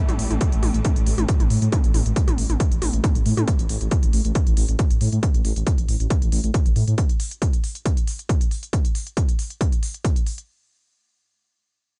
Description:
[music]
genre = driving peak-time techno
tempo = 137 BPM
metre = 4/4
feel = straight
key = unclear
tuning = A4 = 435 Hz
[part]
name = swarming drone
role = drone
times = 0.1-3.5 s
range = A2 to A3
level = -34 LUFS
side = equal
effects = none
[part]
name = dark detuned saw bass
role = bass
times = 0.1-6.9 s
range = A1 to A2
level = -24 LUFS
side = equal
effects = sidechain pumping
[part]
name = techno drum kit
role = drums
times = 0.1-10.5 s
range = hi-hat, toms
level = -33 LUFS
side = equal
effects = none
[part]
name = electronic kick drum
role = drums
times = 0.4-10.1 s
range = none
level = -22 LUFS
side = equal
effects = none
[sound]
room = digital ambience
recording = nothing above 10.3 kHz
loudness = -21 LUFS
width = mono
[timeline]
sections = 0.0-10.5 A section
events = none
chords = 0.0 A5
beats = 0.41 0.85 1.29 | 1.72 2.16 2.60 3.04 | 3.48 3.91 4.35 4.79 | 5.23 5.67 6.10 6.54 | 6.98 7.42 7.86 8.29 | 8.73 9.17 9.61 10.04

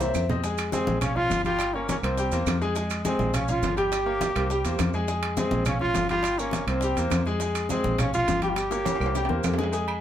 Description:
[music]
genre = latin, salsa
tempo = 207 BPM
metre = 4/4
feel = straight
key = F minor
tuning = A4 = 440 Hz
[part]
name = bright trombone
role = melody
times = 0.0-9.6 s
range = Bb3 to G4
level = -27 LUFS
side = right 1 dB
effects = none
[part]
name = clear concert grand piano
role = accompaniment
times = 0.0-10.0 s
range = G3 to Ab5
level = -29 LUFS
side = left 3 dB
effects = none
[part]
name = fingered electric bass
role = bass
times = 0.0-10.0 s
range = G1 to F2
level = -29 LUFS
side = right 1 dB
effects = none
[part]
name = bongos and cowbell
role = percussion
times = 0.0-9.9 s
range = none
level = -37 LUFS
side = left 4 dB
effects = none
[part]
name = congas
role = percussion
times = 0.0-10.0 s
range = none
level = -32 LUFS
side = left 2 dB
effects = none
[part]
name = maracas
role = percussion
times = 0.0-9.9 s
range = none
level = -40 LUFS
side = right 6 dB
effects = none
[part]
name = timbales and agogo bells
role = percussion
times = 0.0-10.0 s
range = none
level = -34 LUFS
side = right 5 dB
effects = none
[part]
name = claves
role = percussion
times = 0.1-10.0 s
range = none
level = -40 LUFS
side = right 5 dB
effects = none
[sound]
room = wet small room reverb, RT60 0.5 s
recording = heard from further back in the room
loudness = -23 LUFS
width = side -10 dB against mid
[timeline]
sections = 0.4-9.7 A section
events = drum fill 0.0-0.4, 8.6-9.7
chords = 0.4 Fm; 1.0 Bbm; 1.6 Gdim; 2.2 C7; 2.8 Fm; 3.3 Bbm; 3.9 Gdim; 4.5 C7; 5.1 Fm; 5.7 Bbm; 6.2 Gdim; 6.8 C7; 7.4 Fm; 8.0 Bbm; 8.6 Gdim; 9.2 C7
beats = 0.14 | 0.43 0.72 1.02 1.31 | 1.60 1.89 2.18 2.47 | 2.76 3.05 3.34 3.63 | 3.92 4.21 4.50 4.79 | 5.08 5.37 5.66 5.95 | 6.24 6.53 6.82 7.12 | 7.41 7.70 7.99 8.28 | 8.57 8.86 9.15 9.44 | 9.73

